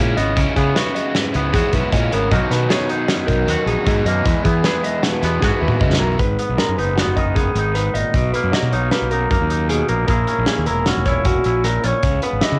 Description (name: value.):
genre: math rock and midwest emo.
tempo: 154 BPM.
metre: 5/4.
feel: straight.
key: unclear.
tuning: A4 = 440 Hz.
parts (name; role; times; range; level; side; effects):
twangy electric guitar; accompaniment; 0.0-12.6 s; E2 to G#4; -25 LUFS; equal; cassette tape.
electric guitar through a small old amp; arpeggios; 0.0-12.6 s; F#4 to D#5; -25 LUFS; equal; cassette tape.
crunchy overdriven guitar; riff; 0.0-6.2 s; B2 to E4; -26 LUFS; equal; phaser, cassette tape.
fuzz fingered electric bass; bass; 0.0-12.6 s; E1 to E3; -23 LUFS; equal; overdrive.
loose indie drum kit; drums; 0.2-12.5 s; hi-hat, kick drum, snare drum, toms; -23 LUFS; equal; cassette tape.
room: light reverb.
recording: home recording on cassette.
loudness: -18 LUFS.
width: mono.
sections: 0.0-6.2 A section; 6.2-12.6 B section.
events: drum fill 5.4-6.2.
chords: 0.0 C#m9; 2.3 Bmaj7; 4.3 Emaj7; 6.2 G#m7; 8.1 Bmaj7; 10.1 F#9; 12.0 C#m9.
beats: | 0.36 0.75 1.14 1.53 1.92 | 2.31 2.70 3.09 3.48 3.86 | 4.25 4.64 5.03 5.42 5.81 | 6.20 6.58 6.97 7.36 7.75 | 8.14 8.53 8.92 9.31 9.70 | 10.09 10.47 10.87 11.25 11.64 | 12.03 12.42.